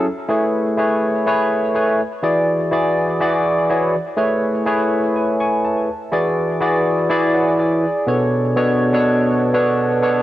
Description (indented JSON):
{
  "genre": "disco",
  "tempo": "123 BPM",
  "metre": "4/4",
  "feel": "straight",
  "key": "unclear",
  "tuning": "A4 = 440 Hz",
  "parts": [
    { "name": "barky tine electric piano", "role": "solo", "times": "0.0-10.2 s", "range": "B2 to C#6", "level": "-15 LUFS", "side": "equal", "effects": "lush chorus, tape echo" }
  ],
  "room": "light reverb, digital ambience",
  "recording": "home recording on cassette",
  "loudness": "-15 LUFS",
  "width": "side -14 dB against mid",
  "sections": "0.1-7.8 A section; 7.8-10.2 B section",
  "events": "none",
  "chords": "0.1 Amaj9; 2.0 E9; 3.9 Amaj9; 5.9 E9; 7.8 Bm7"
}